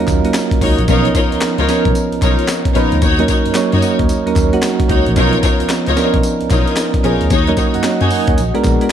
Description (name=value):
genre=R&B, new jack swing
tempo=112 BPM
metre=4/4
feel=swing 64% on 16ths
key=Eb minor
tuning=A4 = 440 Hz
part: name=soft electric-piano-like synth keys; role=accompaniment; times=0.0-8.9 s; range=E#3 to Ab5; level=-16 LUFS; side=right 4 dB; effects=chorus, tremolo
part: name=mellow tine electric piano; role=bass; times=0.0-8.8 s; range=Bb1 to Gb2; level=-19 LUFS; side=equal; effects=medium stereo tremolo
part: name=breakbeat sampler-style drum kit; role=drums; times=0.1-8.9 s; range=handclaps, hi-hat, kick drum, snare drum, tambourine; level=-17 LUFS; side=left 1 dB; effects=none
part: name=group handclap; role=percussion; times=0.1-8.8 s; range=none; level=-34 LUFS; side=left 4 dB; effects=none
part: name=warm studio string section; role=stabs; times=0.6-8.2 s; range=Eb4 to Db5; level=-19 LUFS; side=left 3 dB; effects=none
room=light reverb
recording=none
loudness=-12 LUFS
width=side -9 dB against mid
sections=0.0-8.9 A section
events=none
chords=0.0 Ebm7; 0.9 Bmaj9#11; 3.0 Ebm7; 5.2 Bmaj9#11; 7.3 Ebm7; 8.4 Bb7b9b13